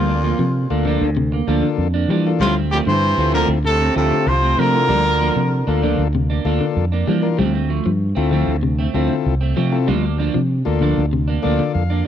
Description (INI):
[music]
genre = afrobeat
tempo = 96 BPM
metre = 4/4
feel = straight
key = unclear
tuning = A4 = 443 Hz
[part]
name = warm trumpet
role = melody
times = 0.0-5.8 s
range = F4 to C5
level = -20 LUFS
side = equal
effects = none
[part]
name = bright baritone saxophone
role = second line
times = 0.0-5.8 s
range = F2 to C3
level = -30 LUFS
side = left 12 dB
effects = none
[part]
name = brilliant trombone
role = second line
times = 0.0-5.8 s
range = A2 to F3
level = -29 LUFS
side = right 5 dB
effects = none
[part]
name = electric guitar at the edge of break-up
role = arpeggios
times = 0.0-11.8 s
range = C3 to G3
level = -24 LUFS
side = left 5 dB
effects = spring reverb
[part]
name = clean electric guitar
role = stabs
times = 0.0-12.1 s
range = F3 to D4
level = -24 LUFS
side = right 8 dB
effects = lush chorus
[part]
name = fingered electric bass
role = bass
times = 0.0-12.0 s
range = C2 to E3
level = -19 LUFS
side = right 1 dB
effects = none
[part]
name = combo organ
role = accompaniment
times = 0.7-12.0 s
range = Bb3 to F5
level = -25 LUFS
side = left 9 dB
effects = none
[sound]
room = small room ambience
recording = dry, close 1970s-style studio recording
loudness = -16 LUFS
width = side -9 dB against mid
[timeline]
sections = 0.0-12.1 A section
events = transistor combo organ fill 11.1-12.1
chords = 0.0 Gm7/D; 2.4 Dm7; 4.9 Gm7/D; 7.4 Dm7; 9.9 Gm7/D (rootless)